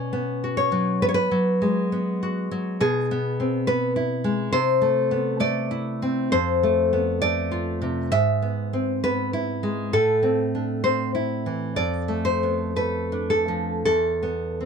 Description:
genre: romantic piece for solo classical guitar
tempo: 53-71 BPM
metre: 4/4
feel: rubato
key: A minor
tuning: A4 = 440 Hz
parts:
  - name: nylon-string guitar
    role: solo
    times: 0.0-14.7 s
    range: E2 to E5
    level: -21 LUFS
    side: equal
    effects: none
room: light reverb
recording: dark, warm production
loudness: -21 LUFS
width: side -6 dB against mid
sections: 0.0-14.7 A section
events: none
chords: 0.0 Bm; 2.8 E/B; 4.5 Am/C; 6.3 F; 8.1 E/G#; 9.9 Am; 11.8 Dm/F; 13.9 E5

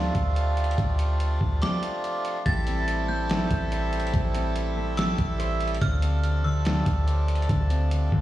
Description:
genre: hip hop, atmospheric cloud-rap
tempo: 143 BPM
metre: 4/4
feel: half-time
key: A minor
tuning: A4 = 440 Hz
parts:
  - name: metallic FM bell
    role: melody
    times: 0.0-7.5 s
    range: D6 to A6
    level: -35 LUFS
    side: right 1 dB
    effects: chorus, digital delay
  - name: accordion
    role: sustained chords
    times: 0.0-8.2 s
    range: C3 to A4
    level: -30 LUFS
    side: right 1 dB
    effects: sidechain pumping
  - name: soft 808-style bass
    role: bass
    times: 0.0-8.2 s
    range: A1 to D2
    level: -25 LUFS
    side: equal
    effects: none
  - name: trip hop sampler-style drum kit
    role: drums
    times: 0.1-8.2 s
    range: hi-hat, kick drum, snare drum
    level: -28 LUFS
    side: equal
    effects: none
  - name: concert harp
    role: arpeggios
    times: 2.5-8.2 s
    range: D3 to D5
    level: -32 LUFS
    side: left 3 dB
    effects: digital delay
room: little or no reverb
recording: played on a big sound system in a bare room, stone room reverb, studio reverb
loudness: -23 LUFS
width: side -14 dB against mid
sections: 0.0-2.5 A section; 2.5-8.2 B section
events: break 1.6-2.5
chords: 0.0 Dm7; 2.5 Am7; 5.8 Dm7

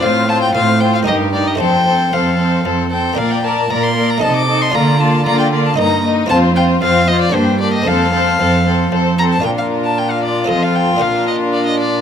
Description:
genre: classical, baroque-style concerto movement with solo episodes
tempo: 115 BPM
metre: 3/4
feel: straight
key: Bb major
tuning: A4 = 438 Hz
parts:
  - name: rich violin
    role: melody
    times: 0.0-12.0 s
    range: C5 to D6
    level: -18 LUFS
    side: left 2 dB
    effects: none
  - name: warm chamber violin section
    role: melody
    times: 0.0-12.0 s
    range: G4 to Eb5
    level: -22 LUFS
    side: left 5 dB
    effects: none
  - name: rich chamber violin section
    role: second line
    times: 0.0-12.0 s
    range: D4 to Bb4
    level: -19 LUFS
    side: left 3 dB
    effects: none
  - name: buff-stop harpsichord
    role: accompaniment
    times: 0.0-12.0 s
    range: F2 to Eb5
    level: -24 LUFS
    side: right 2 dB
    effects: none
  - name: dark chamber viola section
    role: accompaniment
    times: 0.0-12.0 s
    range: Bb3 to Eb4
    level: -20 LUFS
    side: equal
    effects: none
  - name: warm chamber cello section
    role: bass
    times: 0.0-12.0 s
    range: F2 to D3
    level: -18 LUFS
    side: right 3 dB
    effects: none
room: moderate concert hall reverb, RT60 2.3 s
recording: close, detailed microphones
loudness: -12 LUFS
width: side -8 dB against mid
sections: 0.0-9.5 A section; 9.5-12.0 A section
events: none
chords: 0.0 F/A; 1.1 Eb/G; 1.6 F; 3.2 Bb; 4.2 Adim/C; 4.7 Bb/D; 5.8 Eb/G; 6.3 F5; 7.3 Gm; 7.9 F; 9.5 Bb; 10.5 F; 11.0 Bb

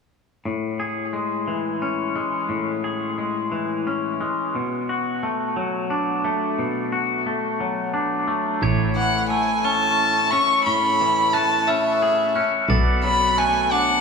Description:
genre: rock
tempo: 59 BPM (dotted quarters)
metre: 6/8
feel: straight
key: A major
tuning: A4 = 440 Hz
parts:
  - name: twangy electric guitar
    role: arpeggios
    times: 0.5-14.0 s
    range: A2 to G#4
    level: -23 LUFS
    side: left 2 dB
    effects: tape echo
  - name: pedal steel guitar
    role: sustained chords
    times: 8.6-14.0 s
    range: A3 to D5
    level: -31 LUFS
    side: right 1 dB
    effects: none
  - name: glockenspiel with soft plastic mallets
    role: arpeggios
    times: 8.6-14.0 s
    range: C#6 to A6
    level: -29 LUFS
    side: right 6 dB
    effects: tape echo
  - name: rich double bass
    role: bass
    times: 8.6-14.0 s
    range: A1 to B1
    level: -23 LUFS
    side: right 1 dB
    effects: none
  - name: dark violin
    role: melody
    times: 9.0-14.0 s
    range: E5 to C#6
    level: -19 LUFS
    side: equal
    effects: tape echo
room: moderate huge ambient reverb, RT60 3.7 s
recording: small room reverb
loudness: -19 LUFS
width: side -5 dB against mid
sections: 0.5-8.6 A section; 8.6-14.0 B section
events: none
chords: 0.5 Amaj7; 4.5 Bm7; 8.6 Amaj7; 12.7 Bm7

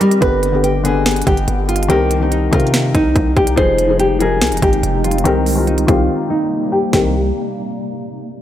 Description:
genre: hip hop, trap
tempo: 143 BPM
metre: 4/4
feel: half-time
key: C minor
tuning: A4 = 440 Hz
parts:
  - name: nylon-string guitar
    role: melody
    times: 0.0-7.1 s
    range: G3 to C5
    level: -17 LUFS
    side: equal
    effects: low-pass filter, digital delay
  - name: granular cloud pad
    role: sustained chords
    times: 0.0-7.1 s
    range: C3 to G5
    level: -23 LUFS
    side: equal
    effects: built-in reverb, low-pass filter
  - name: trap drum kit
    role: drums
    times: 0.0-7.0 s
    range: hi-hat, kick drum, snare drum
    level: -18 LUFS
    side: right 1 dB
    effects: overdrive
  - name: felt-muted upright piano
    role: accompaniment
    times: 0.2-7.1 s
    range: D3 to B4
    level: -19 LUFS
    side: left 5 dB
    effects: low-pass filter
  - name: distorted 808-style bass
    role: bass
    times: 0.2-7.3 s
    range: F1 to C3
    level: -19 LUFS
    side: equal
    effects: distortion
room: light reverb, digital ambience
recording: none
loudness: -13 LUFS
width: side -11 dB against mid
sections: 0.2-6.9 A section; 6.9-8.4 B section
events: break 0.0, 6.1-6.9; filter sweep 0.2-6.9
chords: 0.2 G; 1.9 Cm7; 3.6 Fm7; 5.3 Cm7

